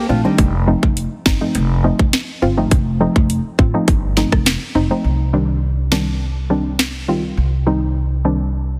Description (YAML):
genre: dancehall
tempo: 103 BPM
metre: 4/4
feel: straight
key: C dorian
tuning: A4 = 440 Hz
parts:
  - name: nylon-string guitar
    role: arpeggios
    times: 0.0-0.5 s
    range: G3 to F4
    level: -23 LUFS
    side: equal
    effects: none
  - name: soft round pluck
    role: accompaniment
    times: 0.1-8.4 s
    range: Eb3 to F4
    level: -22 LUFS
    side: equal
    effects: chorus, phaser, sidechain pumping
  - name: upright bass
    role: bass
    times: 0.1-8.8 s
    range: F1 to C2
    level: -21 LUFS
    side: equal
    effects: none
  - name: island pop drum kit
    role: drums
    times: 0.4-6.9 s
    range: hi-hat, kick drum, rim click, snare drum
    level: -19 LUFS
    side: equal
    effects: none
room: light reverb, small room reverb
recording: heavily compressed radio sound, multiband compression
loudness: -17 LUFS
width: mono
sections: 0.0-5.0 A section; 5.0-8.8 B section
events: none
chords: 0.4 F7; 5.0 Cmadd9